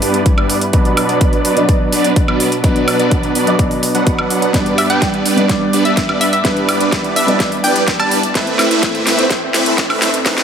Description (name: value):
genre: EDM, festival progressive house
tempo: 126 BPM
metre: 4/4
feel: straight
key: G major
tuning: A4 = 440 Hz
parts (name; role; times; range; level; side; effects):
- warm grand piano; accompaniment; 0.0-10.4 s; G2 to D5; -20 LUFS; equal; vintage 12-bit sampler grit, sidechain pumping, dub echo
- lush unison pad; sustained chords; 0.0-10.4 s; G2 to D5; -23 LUFS; equal; chorus, sidechain pumping
- supersaw chords; riff; 0.0-10.4 s; F#3 to F#5; -16 LUFS; right 1 dB; phaser, sidechain pumping, low-pass filter, dub echo
- big-room dance drum kit; drums; 0.0-10.4 s; hi-hat, snare drum, woodblock; -19 LUFS; right 1 dB; overdrive, high-pass filter on hats, high-pass filter on perc, high-pass filter on snare
- electronic kick drum; drums; 0.3-10.4 s; none; -16 LUFS; equal; overdrive
- riser; sound effects; 6.8-10.4 s; none; -30 LUFS; right 1 dB; none
- hollow square pluck; melody; 4.8-8.4 s; E5 to A5; -20 LUFS; left 1 dB; chorus, dub echo
room: moderate lush hall reverb, RT60 1.9 s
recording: high-pass filter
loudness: -12 LUFS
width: side -8 dB against mid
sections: 0.0-10.4 A section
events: build-up 0.0-10.4; filter sweep on supersaw synth 0.0-10.4; filter sweep 0.0-10.4; drum fill 4.5-10.4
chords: 0.0 G; 0.7 Bm; 4.5 G; 8.4 Amadd9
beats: 0.26 | 0.73 1.21 1.69 2.16 | 2.64 3.12 3.59 4.07 | 4.54 5.02 5.50 5.97 | 6.45 6.92 7.40 7.88 | 8.35 8.83 9.31 9.78 | 10.26